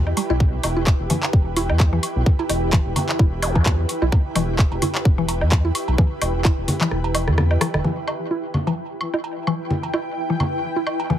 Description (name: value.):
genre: minimal techno.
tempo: 129 BPM.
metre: 4/4.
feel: swing 56% on 16ths.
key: E minor.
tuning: A4 = 441 Hz.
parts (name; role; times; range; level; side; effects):
round analog bass; bass; 0.0-7.8 s; E1 to E2; -22 LUFS; equal; sidechain pumping.
ethereal airy pad; texture; 0.0-11.2 s; E4 to G5; -28 LUFS; equal; ensemble chorus, built-in reverb, tremolo, sidechain pumping.
swarming drone; texture; 0.1-7.9 s; G4; -35 LUFS; equal; built-in reverb, sidechain pumping.
woodblock, cowbell and congas; percussion; 0.1-11.2 s; none; -26 LUFS; equal; dub echo.
mallet-like synth pluck; riff; 0.2-11.1 s; D3 to E4; -25 LUFS; left 1 dB; chorus, sidechain pumping, digital delay.
booming analog drum machine; drums; 0.2-7.8 s; handclaps, hi-hat, rim click; -26 LUFS; left 1 dB; none.
electronic kick drum; drums; 0.4-6.6 s; none; -16 LUFS; equal; none.
zap; sound effects; 3.4-3.6 s; none; -29 LUFS; equal; none.
room: moderate small room reverb, RT60 0.5 s.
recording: heavily compressed radio sound.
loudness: -18 LUFS.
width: side -11 dB against mid.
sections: 0.0-7.8 A section; 7.8-11.2 B section.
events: kick drops out 6.9-7.8; drum fill 6.9-7.8; filter sweep on synth arpeggio sound 7.8-11.2.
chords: 0.0 Em.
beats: | 0.40 0.87 1.33 1.80 | 2.26 2.73 3.19 3.66 | 4.12 4.59 5.05 5.52 | 5.98 6.45 6.91 7.38 | 7.84 8.31 8.77 9.24 | 9.70 10.17 10.63 11.10.